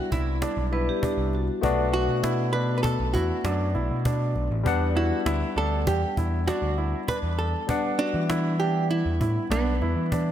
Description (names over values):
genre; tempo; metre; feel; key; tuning
progressive instrumental, band music in an uneven meter; 99 BPM; 5/4; straight; unclear; A4 = 441 Hz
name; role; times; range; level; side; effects
archtop guitar, miked and amplified; melody; 0.0-10.3 s; B3 to B4; -29 LUFS; right 2 dB; slapback echo, digital delay
barky tine electric piano; accompaniment; 0.0-10.3 s; G3 to F#5; -31 LUFS; left 6 dB; auto-pan, slapback echo
warm concert grand piano; arpeggios; 0.1-10.3 s; D4 to F#4; -32 LUFS; right 3 dB; slapback echo, digital delay
overdriven picked electric bass; bass; 0.1-10.3 s; A1 to E3; -26 LUFS; equal; none
cajon; drums; 0.1-10.3 s; none; -32 LUFS; equal; none
vibraphone with hard mallets; second line; 0.7-1.8 s; F#4 to B4; -31 LUFS; right 2 dB; none
room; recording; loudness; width
moderate lush hall reverb, RT60 1.7 s, studio ambience; big arena sound; -23 LUFS; side -10 dB against mid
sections
0.0-10.3 A section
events
none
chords
0.0 Cmaj9; 1.6 Bm7; 4.7 Em9